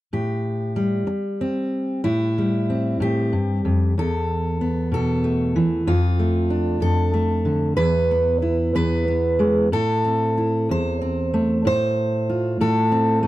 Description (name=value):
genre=folk, solo fingerstyle acoustic guitar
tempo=62 BPM (dotted quarters)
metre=6/8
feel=rubato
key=A minor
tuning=A4 = 444 Hz
part: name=fingerpicked steel-string acoustic guitar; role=solo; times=0.1-13.3 s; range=E2 to C5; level=-19 LUFS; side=equal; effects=none
room=light reverb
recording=dry, close 1970s-style studio recording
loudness=-19 LUFS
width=side -16 dB against mid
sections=0.1-2.0 A section; 2.0-13.3 B section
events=none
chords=0.1 Am7; 4.0 Esus4; 5.9 Dm/F; 7.8 E; 9.7 Am; 11.6 F/A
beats=| 0.12 1.08 | 2.04 3.00 | 3.97 4.92 | 5.85 6.80 | 7.76 8.73 | 9.71 10.68 | 11.64 12.59